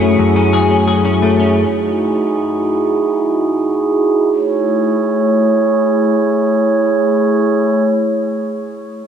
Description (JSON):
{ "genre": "dream pop", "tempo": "87 BPM", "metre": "4/4", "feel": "straight", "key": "A lydian", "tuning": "A4 = 440 Hz", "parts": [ { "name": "glass harmonica", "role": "sustained chords", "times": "0.0-7.8 s", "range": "A3 to C#5", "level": "-13 LUFS", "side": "right 1 dB", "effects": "none" }, { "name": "semi-hollow electric guitar", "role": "arpeggios", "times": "0.0-2.1 s", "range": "F#2 to G#4", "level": "-16 LUFS", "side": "left 3 dB", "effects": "ensemble chorus, digital delay" } ], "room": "wet huge ambient reverb, RT60 5.6 s", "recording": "none", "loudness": "-12 LUFS", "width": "side -8 dB against mid", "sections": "0.0-4.3 A section; 4.3-7.1 B section", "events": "none", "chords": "0.0 F#m9; 1.6 Emaj9; 4.3 Amaj7" }